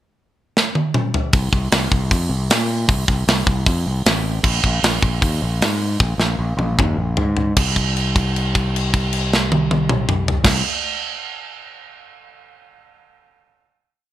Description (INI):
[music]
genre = hard rock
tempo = 154 BPM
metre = 4/4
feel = straight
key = unclear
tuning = A4 = 436 Hz
[part]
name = tight metal drum kit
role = drums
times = 0.6-10.5 s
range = crash cymbal, hi-hat, kick drum, snare drum, toms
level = -18 LUFS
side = equal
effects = none
[part]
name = growling fingered electric bass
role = bass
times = 1.3-10.6 s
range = A1 to Bb2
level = -20 LUFS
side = equal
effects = overdrive
[sound]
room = little or no reverb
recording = none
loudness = -16 LUFS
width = side -13 dB against mid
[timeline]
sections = 0.0-1.3 pickup bar; 1.3-7.6 riff; 7.6-10.7 final note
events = drum fill 0.6-1.3, 6.0-7.6; held note 7.6-10.5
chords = none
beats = 0.18 0.57 0.95 | 1.34 1.73 2.12 2.50 | 2.89 3.28 3.67 4.06 | 4.45 4.84 5.23 5.62 | 6.01 6.40 6.79 7.18 | 7.57 7.96 8.35 8.74 | 9.13 9.52 9.91 10.30